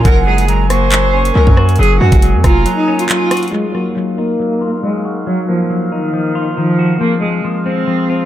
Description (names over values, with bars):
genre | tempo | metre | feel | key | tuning
hip hop, drill | 138 BPM | 4/4 | half-time | unclear | A4 = 440 Hz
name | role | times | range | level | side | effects
clear cello | melody | 0.0-8.3 s | Eb3 to C5 | -16 LUFS | equal | low-pass filter, analog delay
breathy silver concert flute | second line | 0.0-3.1 s | Gb5 to Db6 | -23 LUFS | right 8 dB | analog delay
clean electric guitar | accompaniment | 0.0-8.3 s | Eb3 to Gb4 | -19 LUFS | left 5 dB | low-pass filter, analog delay
warm woodwind section | sustained chords | 0.0-8.3 s | Gb3 to Ab5 | -24 LUFS | right 6 dB | low-pass filter
distorted 808-style bass | bass | 0.0-2.7 s | F1 to Gb2 | -12 LUFS | equal | distortion
drill drum kit | drums | 0.1-3.5 s | handclaps, hi-hat, kick drum, rim click | -14 LUFS | equal | none
room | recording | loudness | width
light reverb, small room reverb | echo-heavy mix | -11 LUFS | side -12 dB against mid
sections
0.0-3.5 A section; 3.5-8.3 B section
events
break 2.7-3.5; filter sweep 3.5-8.3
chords
0.1 Gbadd9; 3.5 Ebmadd9; 7.0 Fm